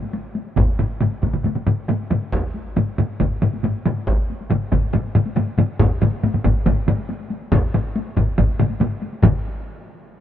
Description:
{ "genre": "japanese traditional, taiko drum ensemble", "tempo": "139 BPM", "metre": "4/4", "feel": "straight", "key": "none", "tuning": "none", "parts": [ { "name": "taiko ensemble", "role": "percussion", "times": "0.0-9.4 s", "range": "none", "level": "-28 LUFS", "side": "left 3 dB", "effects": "none" }, { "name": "taiko ensemble", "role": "percussion", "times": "0.6-9.6 s", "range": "none", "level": "-21 LUFS", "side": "left 2 dB", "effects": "none" }, { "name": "taiko ensemble", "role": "percussion", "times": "0.6-9.6 s", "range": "none", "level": "-21 LUFS", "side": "right 2 dB", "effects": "none" }, { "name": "taiko ensemble", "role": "percussion", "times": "0.6-9.4 s", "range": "none", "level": "-23 LUFS", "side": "equal", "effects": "none" } ], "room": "little or no reverb", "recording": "minimal, uncompressed stereo recording", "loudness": "-18 LUFS", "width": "side -10 dB against mid", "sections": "0.0-9.2 A section", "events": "speeding up 0.0-10.2", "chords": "none" }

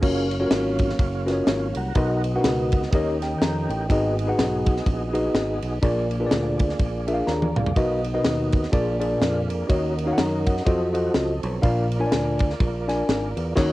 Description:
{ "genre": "uptempo gospel", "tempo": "124 BPM", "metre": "4/4", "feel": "swing 58% on 8ths", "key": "unclear", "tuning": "A4 = 440 Hz", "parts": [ { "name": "mellow tine electric piano", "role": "accompaniment", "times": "0.0-13.7 s", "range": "Ab2 to Bb5", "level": "-24 LUFS", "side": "left 1 dB", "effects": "cassette tape" }, { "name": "tonewheel organ", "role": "sustained chords", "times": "0.0-13.7 s", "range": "F3 to Bb5", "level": "-30 LUFS", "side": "right 2 dB", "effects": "slow rotary speaker, chorus vibrato, cassette tape" }, { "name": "fingered electric bass", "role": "bass", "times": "0.0-13.7 s", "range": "Gb1 to Gb2", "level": "-28 LUFS", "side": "equal", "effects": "none" }, { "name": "tight funk drum kit", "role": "drums", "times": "0.0-13.7 s", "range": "crash cymbal, kick drum, ride cymbal, snare drum, toms", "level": "-24 LUFS", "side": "equal", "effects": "cassette tape" } ], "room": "light reverb", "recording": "home recording on cassette", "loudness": "-20 LUFS", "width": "side -17 dB against mid", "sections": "0.0-13.7 A section", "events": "tonewheel organ fill 3.2-3.9, 10.7-11.6; drum fill 7.3-7.8; band accent 13.6", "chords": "0.0 Gbmaj7; 2.0 Bmaj7; 2.9 Eb7; 3.9 Abm7; 5.8 Bb7; 7.8 Bmaj7; 8.7 Bb7; 9.7 Ebm7; 10.7 F7b9; 11.6 Bb" }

